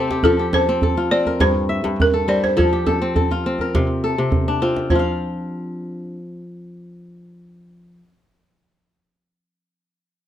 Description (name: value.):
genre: west african traditional, West African string and xylophone music.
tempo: 103 BPM.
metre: 4/4.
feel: straight.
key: F major.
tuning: A4 = 440 Hz.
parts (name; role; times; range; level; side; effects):
kora; arpeggios; 0.0-8.1 s; G2 to F5; -20 LUFS; left 1 dB; slapback echo.
djembe; percussion; 0.1-5.2 s; none; -22 LUFS; right 1 dB; none.
balafon; melody; 0.2-7.9 s; A4 to D5; -20 LUFS; equal; none.
room: light reverb.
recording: dark, warm production.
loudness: -16 LUFS.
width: side -11 dB against mid.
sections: 0.0-4.9 A section; 4.9-7.2 B section.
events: kora fill 0.0.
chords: 0.2 F; 1.4 Gm; 2.6 F; 3.7 C13sus4; 4.9 N.C..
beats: | 0.24 0.83 1.41 1.99 | 2.58 3.16 3.74 4.33 | 4.91 5.49 6.07 6.66.